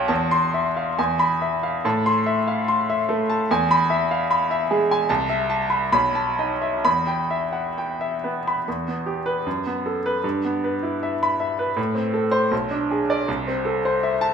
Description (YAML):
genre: classical, romantic character piece for solo piano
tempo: 64-81 BPM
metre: 2/4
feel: rubato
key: A minor, E minor from 5.1 s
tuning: A4 = 440 Hz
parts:
  - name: clear grand piano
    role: solo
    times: 0.0-14.3 s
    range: B1 to D6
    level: -20 LUFS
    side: equal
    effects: none
room: wet recital hall reverb, RT60 1.7 s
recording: minimal, uncompressed stereo recording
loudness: -20 LUFS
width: side -6 dB against mid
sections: 0.0-8.7 A section; 8.7-14.3 B section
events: none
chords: 0.1 Am/E; 1.0 E; 1.8 Am; 3.5 E; 5.1 Am/C; 5.9 B7; 6.8 Em; 9.5 B5/F#; 10.2 Em/G; 11.8 Am; 12.5 Bm6; 13.3 Am/C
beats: | 0.10 0.98 | 1.84 2.67 | 3.50 4.30 | 5.09 5.92 | 6.82 7.76 | 8.67 9.46 | 10.24 11.02 | 11.78 12.52 | 13.28 14.03